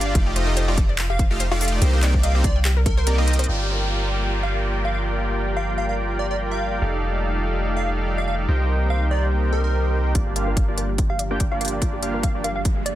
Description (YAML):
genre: future bass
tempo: 144 BPM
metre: 4/4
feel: swing 55% on 16ths, half-time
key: G minor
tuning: A4 = 436 Hz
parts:
  - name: plucky unison lead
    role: melody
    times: 0.0-12.9 s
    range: Bb4 to F5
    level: -30 LUFS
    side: equal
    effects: sidechain pumping, digital delay
  - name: supersaw chords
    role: riff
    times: 0.0-12.5 s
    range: A3 to G5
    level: -26 LUFS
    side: equal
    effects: sidechain pumping, low-pass filter, digital delay
  - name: long sustained 808-style bass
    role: bass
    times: 0.0-13.0 s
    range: F1 to C2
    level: -22 LUFS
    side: equal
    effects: tube saturation, sidechain pumping
  - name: trap drum kit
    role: drums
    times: 0.0-3.6, 10.2-13.0 s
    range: crash cymbal, handclaps, hi-hat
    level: -28 LUFS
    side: equal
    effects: low-pass filter on snare, low-pass filter on hats, low-pass filter on cymbals
  - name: wide unison pluck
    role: arpeggios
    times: 0.1-3.4, 10.2-12.9 s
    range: F4 to Bb5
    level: -34 LUFS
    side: left 4 dB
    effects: sidechain pumping, digital delay
  - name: electronic kick drum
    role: drums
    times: 0.2-3.0, 10.2-12.7 s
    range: none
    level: -21 LUFS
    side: equal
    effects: none
  - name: airy breathy pad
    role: sustained chords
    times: 3.5-13.0 s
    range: Eb3 to D5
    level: -32 LUFS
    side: equal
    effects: chorus, sidechain pumping
  - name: downlifter and riser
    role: sound effects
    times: 3.5-6.8, 12.0-13.0 s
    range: none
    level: -33 LUFS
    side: equal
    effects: none
room: little or no reverb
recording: dense, heavily limited modern master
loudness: -19 LUFS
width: side -14 dB against mid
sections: 0.0-3.5 A section; 3.5-10.2 B section; 10.2-13.0 C section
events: drop 0.0-3.5; kick drops out 3.1-3.5; drum fill 3.3; build-up 10.2-13.0; filter sweep on synth arpeggio sound 10.2-13.0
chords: 0.2 F13; 1.8 Cm7; 3.5 Gm7; 6.8 F13; 8.5 Cm7; 10.2 Gm7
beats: | 0.15 0.57 0.98 1.40 | 1.82 2.23 2.65 3.07 | 3.48 3.90 4.32 4.73 | 5.15 5.57 5.98 6.40 | 6.82 7.23 7.65 8.07 | 8.48 8.90 9.32 9.73 | 10.15 10.57 10.98 11.40 | 11.82 12.23 12.65